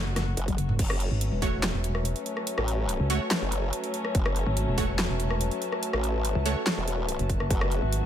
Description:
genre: heavy wobble dubstep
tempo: 143 BPM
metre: 4/4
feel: half-time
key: F# minor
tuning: A4 = 438 Hz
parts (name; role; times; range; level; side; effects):
- dark chamber string section; sustained chords; 0.0-8.1 s; F#3 to F#4; -35 LUFS; left 3 dB; sidechain pumping, low-pass filter
- pulsing pluck wobble bass; bass; 0.0-8.1 s; E1 to C#2; -28 LUFS; equal; chorus, overdrive
- dubstep drum kit; drums; 0.2-8.0 s; crash cymbal, handclaps, hi-hat, rim click, snare drum, toms; -30 LUFS; equal; overdrive
- formant-sweep wobble bass; bass; 0.4-7.8 s; E1 to A1; -29 LUFS; equal; chorus, overdrive
- electronic kick drum; drums; 0.5-1.5, 4.1-7.6 s; none; -29 LUFS; equal; overdrive
- airy breathy pad; texture; 0.8-8.1 s; F#4 to A5; -34 LUFS; left 1 dB; chorus, sidechain pumping
- orchestra-hit-like synth stab; stabs; 1.4-6.6 s; A3 to C#5; -34 LUFS; right 4 dB; built-in reverb, ping-pong delay
room: light reverb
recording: none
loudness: -25 LUFS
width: side -10 dB against mid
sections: 0.8-8.1 A section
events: drum fill 0.5-0.8; drop 0.8-8.1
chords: 0.0 F#m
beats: 0.37 | 0.79 1.21 1.63 2.05 | 2.47 2.89 3.31 3.73 | 4.15 4.57 4.99 5.41 | 5.83 6.25 6.67 7.08 | 7.50 7.92

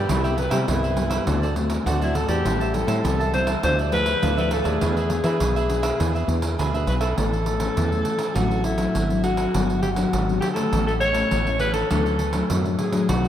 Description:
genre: samba and choro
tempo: 102 BPM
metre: 4/4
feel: straight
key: A major from 7.2 s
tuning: A4 = 439 Hz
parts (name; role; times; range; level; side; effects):
- growling alto saxophone; melody; 0.0-13.3 s; E4 to C#5; -25 LUFS; left 1 dB; none
- cavaquinho; accompaniment; 0.0-7.2 s; D4 to A5; -30 LUFS; right 4 dB; none
- nylon-string guitar; accompaniment; 0.0-13.3 s; G2 to G#4; -26 LUFS; left 3 dB; none
- woody fretless electric bass; bass; 0.0-13.3 s; G1 to E3; -25 LUFS; equal; none
- pandeiro; percussion; 0.1-13.3 s; none; -28 LUFS; right 3 dB; none
room: wet cathedral reverb, RT60 4.6 s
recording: in a vast, echoing space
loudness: -20 LUFS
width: side -10 dB against mid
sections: 0.0-7.2 A section; 7.2-13.3 B section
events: none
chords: 0.1 Cmaj7; 1.3 D7; 2.5 Am7; 3.6 Dmadd9; 4.8 E7; 7.2 A; 8.4 D7/A; 9.5 Gmaj7; 10.7 A; 11.9 D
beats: | 0.09 0.68 1.27 1.86 | 2.46 3.05 3.64 4.23 | 4.82 5.41 6.00 6.59 | 7.18 7.77 8.36 8.95 | 9.54 10.14 10.73 11.32 | 11.91 12.50 13.09

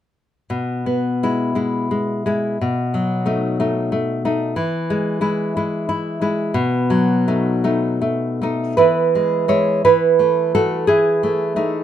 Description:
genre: romantic piece for solo classical guitar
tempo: 50-62 BPM (dotted quarters)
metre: 6/8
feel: rubato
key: E major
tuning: A4 = 440 Hz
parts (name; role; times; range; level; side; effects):
- nylon-string guitar; solo; 0.5-11.8 s; B2 to C#5; -16 LUFS; equal; none
room: light reverb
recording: minimal, uncompressed stereo recording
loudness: -16 LUFS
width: side -10 dB against mid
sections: 0.5-8.8 A section; 8.8-11.8 B section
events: none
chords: 0.5 E/B; 2.6 B7; 4.6 E; 6.6 B7; 8.8 E; 9.9 F#m7/E; 10.9 F#m13/E (rootless)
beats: | 0.50 1.57 | 2.61 3.60 | 4.57 5.55 | 6.56 7.64 | 8.79 9.86 | 10.89

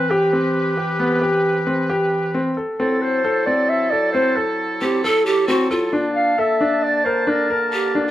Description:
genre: contemporary instrumental, chamber music in an uneven meter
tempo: 134 BPM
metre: 7/4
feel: straight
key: unclear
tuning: A4 = 440 Hz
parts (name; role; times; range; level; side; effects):
- mellow clarinet; melody; 0.0-8.1 s; G4 to F5; -20 LUFS; equal; none
- clear woodwind section; sustained chords; 0.0-8.1 s; D3 to A5; -24 LUFS; right 1 dB; none
- clear grand piano; arpeggios; 0.0-8.1 s; B3 to Bb4; -21 LUFS; left 1 dB; none
- breathy mellow pan flute; second line; 4.8-8.1 s; F4 to A4; -19 LUFS; right 2 dB; none
room: light reverb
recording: close, detailed microphones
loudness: -16 LUFS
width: side -13 dB against mid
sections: 0.0-8.1 A section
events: none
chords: 0.0 Cmaj7; 2.8 F#m7b5; 5.9 Bbmaj7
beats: 0.09 0.54 0.99 1.44 1.89 2.34 | 2.79 3.24 3.69 4.14 4.59 5.04 5.49 | 5.93 6.38 6.83 7.28 7.73

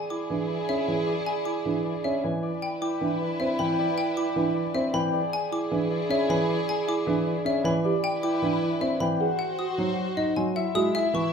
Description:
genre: classical, minimalist pattern music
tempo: 310 BPM (eighths)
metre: 7/8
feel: straight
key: E mixolydian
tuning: A4 = 443 Hz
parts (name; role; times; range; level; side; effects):
- concert harp; melody; 0.0-11.3 s; D5 to B#5; -32 LUFS; left 5 dB; none
- warm French horn; second line; 0.0-11.3 s; E4 to G#4; -32 LUFS; right 4 dB; none
- warm symphonic violin section; sustained chords; 0.0-11.3 s; E4 to E5; -35 LUFS; left 2 dB; none
- xylophone with wooden mallets; arpeggios; 0.0-11.3 s; D#5 to D#6; -32 LUFS; left 3 dB; none
- folk marimba with soft mallets; arpeggios; 0.1-11.3 s; D4 to D#5; -31 LUFS; right 5 dB; none
- dark grand piano; accompaniment; 0.3-11.3 s; E3 to D#4; -29 LUFS; equal; none
room: moderate large studio reverb, RT60 1.3 s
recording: minimal, uncompressed stereo recording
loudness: -24 LUFS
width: side -6 dB against mid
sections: 0.0-10.6 A section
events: none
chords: 0.0 E7; 2.4 Cmaj7; 5.1 E7; 7.9 Cmaj7; 9.2 G#7; 10.6 C#madd9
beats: 0.11 0.30 0.50 0.69 0.88 | 1.08 1.27 1.46 1.66 1.85 2.04 2.24 | 2.43 2.62 2.82 3.01 3.21 3.40 3.59 | 3.79 3.98 4.17 4.37 4.56 4.75 4.95 | 5.14 5.33 5.53 5.72 5.92 6.11 6.30 | 6.50 6.69 6.88 7.08 7.27 7.46 7.66 | 7.85 8.04 8.24 8.43 8.62 8.82 9.01 | 9.21 9.40 9.59 9.79 9.98 10.17 10.37 | 10.56 10.75 10.95 11.14

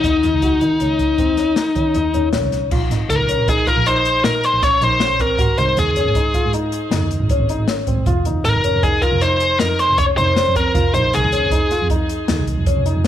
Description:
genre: progressive instrumental, band music in an uneven meter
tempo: 157 BPM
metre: 7/4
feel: straight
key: unclear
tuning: A4 = 444 Hz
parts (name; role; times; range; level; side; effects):
- bluesy overdriven lead guitar; melody; 0.0-11.9 s; Eb4 to Db5; -17 LUFS; left 2 dB; distortion, tape echo
- dark concert grand piano; arpeggios; 0.0-13.1 s; C4 to Gb4; -24 LUFS; left 3 dB; none
- dark double bass; bass; 0.0-13.1 s; F1 to Eb3; -21 LUFS; right 2 dB; none
- open jazz drum kit; drums; 0.0-13.1 s; crash cymbal, hi-hat, kick drum, snare drum; -22 LUFS; equal; none
room: moderate plate reverb, RT60 1.3 s, studio ambience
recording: 1960s-style stereo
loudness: -14 LUFS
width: side -11 dB against mid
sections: 0.0-2.7 A section; 2.7-13.1 B section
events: none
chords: 0.0 Eb7(no3); 2.7 Bbmadd9; 5.4 Ab7; 8.1 F7(no3)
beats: | 0.04 0.42 0.80 1.18 1.56 1.95 2.33 | 2.71 3.10 3.48 3.86 4.24 4.62 5.01 | 5.39 5.77 6.16 6.54 6.92 7.30 7.68 | 8.07 8.45 8.83 9.22 9.60 9.98 10.37 | 10.75 11.13 11.52 11.90 12.28 12.66 13.05

